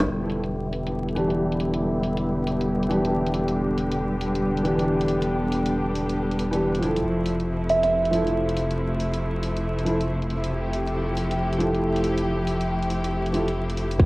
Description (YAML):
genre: future garage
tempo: 138 BPM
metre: 4/4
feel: swing 64% on 16ths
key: E phrygian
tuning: A4 = 438 Hz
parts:
  - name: clear symphonic string section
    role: sustained chords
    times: 0.0-14.1 s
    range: C3 to G4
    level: -25 LUFS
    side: equal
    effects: sidechain pumping, low-pass filter
  - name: warm sub bass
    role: bass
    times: 0.0-14.1 s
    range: E1 to F1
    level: -30 LUFS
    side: equal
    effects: tube saturation, sidechain pumping
  - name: garage drum kit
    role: drums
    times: 0.0-14.0 s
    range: bongos, hi-hat, rim click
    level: -33 LUFS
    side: equal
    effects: low-pass filter on perc, small room ambience, cassette tape, low-pass filter on hats, low-pass filter on snare
  - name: felt-muted upright piano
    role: accompaniment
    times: 1.1-13.5 s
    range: E3 to A4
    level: -28 LUFS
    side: equal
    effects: vintage 12-bit sampler grit, sidechain pumping, tape echo
  - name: kalimba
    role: melody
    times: 7.7-7.9 s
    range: E5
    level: -24 LUFS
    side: right 2 dB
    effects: cassette tape, tape echo
  - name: electronic kick drum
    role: drums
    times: 14.0-14.1 s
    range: none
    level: -14 LUFS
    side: equal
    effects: small room ambience, cassette tape
room: moderate spring reverb, RT60 2.4 s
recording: home recording on cassette, vinyl crackle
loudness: -22 LUFS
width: side -22 dB against mid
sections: 0.1-14.0 A section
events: band accent 0.0; filter sweep on drum 0.1-14.0; filter sweep on string section 0.1-14.0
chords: 0.1 Em7; 7.0 Fmaj7